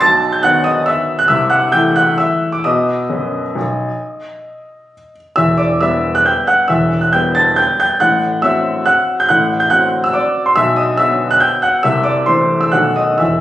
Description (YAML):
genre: classical, piano waltz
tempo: 127-149 BPM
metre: 3/4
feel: rubato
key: unclear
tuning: A4 = 439 Hz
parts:
  - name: clear upright piano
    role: solo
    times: 0.0-13.4 s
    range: E1 to A6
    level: -12 LUFS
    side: equal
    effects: none
room: wet stone room reverb, RT60 1.4 s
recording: recorded on a phone in the room, club reverb, compression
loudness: -12 LUFS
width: side -13 dB against mid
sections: 0.0-13.4 A section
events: none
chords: 0.0 B; 1.3 Am/C; 2.6 B; 5.4 Em; 8.0 F#dim/A; 10.6 B; 11.9 Am/C; 12.7 B7